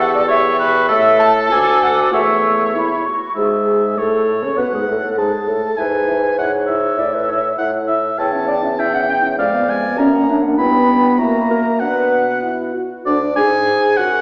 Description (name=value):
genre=quick classical-period movement for wind quintet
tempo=100 BPM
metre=2/4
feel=straight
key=A major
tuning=A4 = 440 Hz
part: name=mellow concert flute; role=melody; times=0.0-14.2 s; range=G#4 to E6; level=-26 LUFS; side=equal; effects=none
part: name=warm oboe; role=second line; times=0.0-14.2 s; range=A4 to B5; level=-21 LUFS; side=equal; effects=none
part: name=dark clarinet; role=accompaniment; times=0.0-14.2 s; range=C#4 to A5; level=-21 LUFS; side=equal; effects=none
part: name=warm French horn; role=accompaniment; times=0.0-14.2 s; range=G#3 to G#4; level=-24 LUFS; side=equal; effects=none
part: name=warm bassoon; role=bass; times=0.0-14.2 s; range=D2 to C#3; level=-24 LUFS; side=equal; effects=none
room=wet recital hall reverb, RT60 1.6 s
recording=none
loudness=-16 LUFS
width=mono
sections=0.0-3.4 A section; 3.4-13.1 B section; 13.1-14.2 C section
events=none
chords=0.0 A7/E; 0.9 A5; 1.5 D; 2.1 A/E; 2.7 E5; 3.4 A; 4.6 F#m; 5.8 E/G#; 7.0 A5; 8.2 C#dim/E; 9.4 Fdim7; 10.0 F#7; 10.6 G; 11.2 F#7; 11.8 Bm; 13.1 N.C.; 13.7 F#sus2